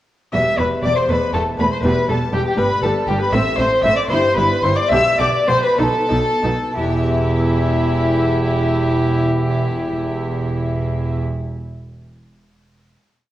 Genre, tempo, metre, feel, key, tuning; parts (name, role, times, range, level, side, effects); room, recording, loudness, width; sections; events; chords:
classical, baroque-style concerto movement with solo episodes; 59-80 BPM (dotted quarters); 6/8; straight; E minor; A4 = 439 Hz
dark violin; melody; 0.3-11.2 s; G4 to E5; -22 LUFS; left 1 dB
warm chamber violin section; melody; 0.3-11.2 s; E5 to E6; -25 LUFS; left 3 dB
rich chamber violin section; second line; 0.3-11.2 s; E4 to E5; -23 LUFS; left 1 dB
harpsichord; accompaniment; 0.3-11.5 s; E2 to E5; -27 LUFS; left 1 dB
warm chamber viola section; accompaniment; 0.3-11.2 s; G3 to G4; -24 LUFS; equal
rich chamber double bass section; bass; 0.3-11.2 s; E1 to B1; -23 LUFS; right 2 dB
warm chamber cello section; bass; 0.3-11.2 s; E2 to B2; -24 LUFS; right 1 dB
wet recital hall reverb, RT60 1.6 s; worn, warbling old tape, cassette tape, warbly pitch drift; -15 LUFS; side -14 dB against mid
0.3-6.8 ritornello; 6.8-10.8 final chord
slowing down 2.6-6.8
0.3 Em; 1.1 B7/E; 1.8 Em; 2.6 G; 3.3 Am; 4.1 Em/G; 4.9 Em/B; 5.8 B7; 6.8 Em